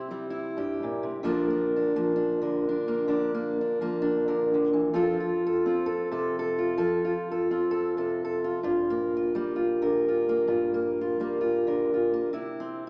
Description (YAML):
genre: folk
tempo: 65 BPM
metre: 4/4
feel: swing 57% on 8ths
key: G dorian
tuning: A4 = 440 Hz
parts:
  - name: fingerpicked steel-string acoustic guitar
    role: solo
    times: 0.0-12.9 s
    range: G2 to Bb4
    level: -24 LUFS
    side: equal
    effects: none
room: wet recital hall reverb, RT60 1.4 s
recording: recorded in a church or concert hall, small speaker sound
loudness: -24 LUFS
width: side -30 dB against mid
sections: 0.0-12.9 A section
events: none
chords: 0.0 C; 1.2 Bb/D; 4.9 F; 8.6 Gm7; 12.3 C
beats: 0.32 | 1.24 2.16 3.09 4.01 | 4.93 5.86 6.78 7.70 | 8.63 9.55 10.48 11.40 | 12.33